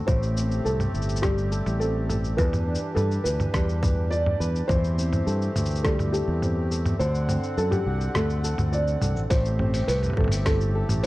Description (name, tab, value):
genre	folktronica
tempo	104 BPM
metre	4/4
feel	straight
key	A dorian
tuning	A4 = 440 Hz
part	accordion	sustained chords	0.0-11.1 s	D3 to F#5	-36 LUFS	equal	light tremolo tuning
part	flamenco guitar	arpeggios	0.0-11.1 s	A2 to B4	-32 LUFS	equal	none
part	felt-muted upright piano	melody	0.1-11.1 s	G4 to D5	-29 LUFS	equal	digital delay
part	overdriven fingered electric bass	bass	0.1-11.1 s	G1 to G2	-25 LUFS	equal	none
part	electronic kick drum	drums	0.1-10.6 s	none	-24 LUFS	equal	overdrive, studio ambience
part	lo-fi sampler-style drum kit	drums	0.1-11.1 s	cabasa, hi-hat, rim click, toms	-30 LUFS	equal	studio ambience
room	little or no reverb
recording	dark, warm production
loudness	-22 LUFS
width	side -18 dB against mid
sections	0.0-9.3 A section; 9.3-11.1 B section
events	kick drops out 7.0-9.3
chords	0.1 Am7; 2.4 Em7; 4.7 Am7; 7.0 D7; 9.3 Am7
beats	| 0.08 0.66 1.23 1.81 | 2.39 2.96 3.54 4.12 | 4.69 5.27 5.85 6.42 | 7.00 7.58 8.16 8.73 | 9.31 9.89 10.46 11.04